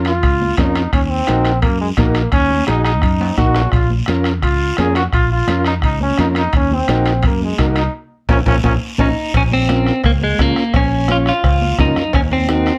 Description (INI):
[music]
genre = latin, cumbia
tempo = 171 BPM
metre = 4/4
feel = straight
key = Bb minor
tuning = A4 = 440 Hz
[part]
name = combo organ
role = accompaniment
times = 0.0-12.7 s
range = Db4 to Db5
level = -22 LUFS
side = equal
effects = none
[part]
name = fingered electric bass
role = bass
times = 0.0-12.7 s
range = Bb1 to Gb2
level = -20 LUFS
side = equal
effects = none
[part]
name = timbales and cowbell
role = percussion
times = 0.0-12.3 s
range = none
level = -30 LUFS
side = equal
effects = none
[part]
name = brilliant trombone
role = second line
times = 0.1-9.1 s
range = Ab3 to Ab4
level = -21 LUFS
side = equal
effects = none
[part]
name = bombo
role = percussion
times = 0.1-12.8 s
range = none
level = -21 LUFS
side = equal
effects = none
[part]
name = guiro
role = percussion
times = 0.1-12.8 s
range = none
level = -34 LUFS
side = equal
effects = none
[part]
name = congas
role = percussion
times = 0.2-12.7 s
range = none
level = -28 LUFS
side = equal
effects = none
[part]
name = clean electric guitar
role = melody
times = 9.0-12.8 s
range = Ab3 to F4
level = -20 LUFS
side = equal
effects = spring reverb, plate reverb
[sound]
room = light reverb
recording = none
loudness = -16 LUFS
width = mono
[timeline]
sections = 0.0-9.3 A section; 9.3-12.8 B section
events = trombone solo 0.0-9.3; drum fill 3.2-3.7, 8.3-9.3; band accent 7.9-9.3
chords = 0.0 Bbm; 0.9 Ebm; 3.7 Bbm; 6.5 Ebm; 7.9 Bbm; 12.1 Ebm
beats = 0.23 0.58 | 0.93 1.28 1.63 1.98 | 2.33 2.68 3.03 3.38 | 3.73 4.08 4.43 4.78 | 5.13 5.48 5.83 6.18 | 6.53 6.88 7.24 7.59 | 7.94 8.29 8.64 8.99 | 9.34 9.69 10.04 10.39 | 10.74 11.09 11.44 11.79 | 12.13 12.48